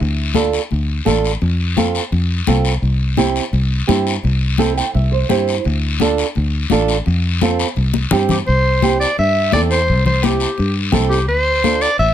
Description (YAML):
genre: latin, cumbia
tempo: 170 BPM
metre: 4/4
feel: straight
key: C major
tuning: A4 = 439 Hz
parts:
  - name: fingered electric bass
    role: bass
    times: 0.0-12.1 s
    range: A1 to G2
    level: -17 LUFS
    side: equal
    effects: none
  - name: congas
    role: percussion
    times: 0.0-12.1 s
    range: none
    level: -20 LUFS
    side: left 8 dB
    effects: none
  - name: guiro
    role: percussion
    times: 0.0-12.1 s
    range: none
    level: -25 LUFS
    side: left 7 dB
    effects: none
  - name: flamenco guitar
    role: accompaniment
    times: 0.3-11.9 s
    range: C4 to G5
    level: -18 LUFS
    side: right 7 dB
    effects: none
  - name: breathy clarinet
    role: melody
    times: 8.3-12.1 s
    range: G4 to E5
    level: -16 LUFS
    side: equal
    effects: plate reverb
room: light reverb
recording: none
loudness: -14 LUFS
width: side -10 dB against mid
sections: 0.0-8.5 A section; 8.5-12.1 B section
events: nylon-string guitar fill 4.6-5.7; drum fill 7.9-8.5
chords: 0.0 Dm; 1.4 F; 2.8 C; 5.7 Dm; 7.1 F; 7.8 C; 11.3 Dm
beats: | 0.00 0.35 0.70 1.06 | 1.41 1.76 2.12 2.47 | 2.83 3.18 3.53 3.89 | 4.24 4.59 4.95 5.30 | 5.65 6.00 6.36 6.71 | 7.06 7.41 7.77 8.12 | 8.47 8.82 9.17 9.53 | 9.88 10.23 10.58 10.93 | 11.29 11.64 11.99